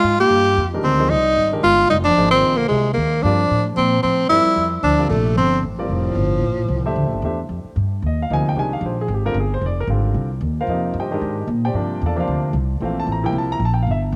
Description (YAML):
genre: modal jazz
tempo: 226 BPM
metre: 4/4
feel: swing 58% on 8ths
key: F dorian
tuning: A4 = 440 Hz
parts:
  - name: warm tenor saxophone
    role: melody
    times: 0.0-7.2 s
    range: F3 to G4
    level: -19 LUFS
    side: equal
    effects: none
  - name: breathy bass clarinet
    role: second line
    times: 0.0-7.2 s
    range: A2 to Bb3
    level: -27 LUFS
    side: equal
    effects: none
  - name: upright bass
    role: bass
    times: 0.0-14.2 s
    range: F1 to Bb2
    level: -24 LUFS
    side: equal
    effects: none
  - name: warm baby grand piano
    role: accompaniment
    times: 0.7-14.0 s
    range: Bb2 to Bb5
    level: -27 LUFS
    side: equal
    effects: none
room: light reverb, studio ambience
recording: none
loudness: -19 LUFS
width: mono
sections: 0.0-7.5 A section; 7.5-14.2 B section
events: none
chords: 0.0 Fm11; 3.2 Gm11; 7.5 Fm11; 11.7 Gm11